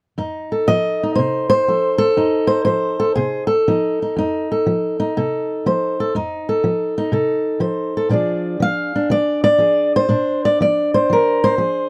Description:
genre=acoustic country blues, solo or duo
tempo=121 BPM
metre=4/4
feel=swing 67% on 8ths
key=F mixolydian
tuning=A4 = 442 Hz
part: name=fingerpicked steel-string acoustic guitar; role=solo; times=0.2-11.9 s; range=F2 to F5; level=-18 LUFS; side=equal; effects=none
room=light reverb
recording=dry, close 1970s-style studio recording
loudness=-18 LUFS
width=mono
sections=0.2-11.9 A section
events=none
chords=0.2 F7; 8.1 Bb7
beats=| 0.20 0.69 1.18 1.68 | 2.17 2.66 3.16 3.65 | 4.15 4.64 5.14 5.63 | 6.13 6.62 7.12 7.62 | 8.11 8.61 9.10 9.60 | 10.10 10.59 11.09 11.58

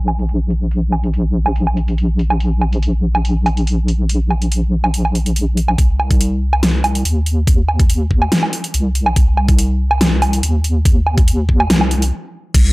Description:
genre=deep dubstep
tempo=142 BPM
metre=4/4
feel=half-time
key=C minor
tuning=A4 = 439 Hz
part: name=deep soft wobble bass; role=bass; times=0.0-12.7 s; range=Bb1 to Eb2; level=-15 LUFS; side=equal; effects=chorus
part: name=dubstep drum kit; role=drums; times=0.1-12.6 s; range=crash cymbal, hi-hat, snare drum, woodblock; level=-18 LUFS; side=right 1 dB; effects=overdrive
part: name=electronic kick drum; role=drums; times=5.8-12.6 s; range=none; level=-12 LUFS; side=equal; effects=none
room=light reverb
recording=dry, gritty hardware recording, low-pass filter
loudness=-13 LUFS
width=side -22 dB against mid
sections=0.0-5.8 A section; 5.8-12.5 B section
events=filter sweep 0.0-5.8; build-up 5.8-12.5; stop 12.1-12.5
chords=none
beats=0.29 | 0.71 1.14 1.56 1.98 | 2.40 2.83 3.25 3.67 | 4.09 4.52 4.94 5.36 | 5.78 6.21 6.63 7.05 | 7.47 7.90 8.32 8.74 | 9.16 9.59 10.01 10.43 | 10.86 11.28 11.70 12.12 | 12.54

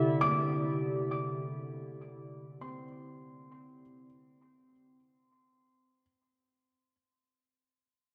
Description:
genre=ambient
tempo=50 BPM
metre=4/4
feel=straight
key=unclear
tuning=A4 = 435 Hz
part: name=warbly tape-like pad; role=sustained chords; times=0.0-3.8 s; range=C3 to D5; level=-35 LUFS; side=equal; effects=chorus, built-in reverb
part: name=felt-muted upright piano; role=arpeggios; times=0.0-6.0 s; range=C4 to D6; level=-39 LUFS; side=equal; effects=analog delay
room=wet echo chamber reverb, RT60 2.6 s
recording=echo-heavy mix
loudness=-33 LUFS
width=mono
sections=0.0-3.8 A section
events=fade-out 0.0-3.8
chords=0.0 D9sus4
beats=0.20 1.40 2.60

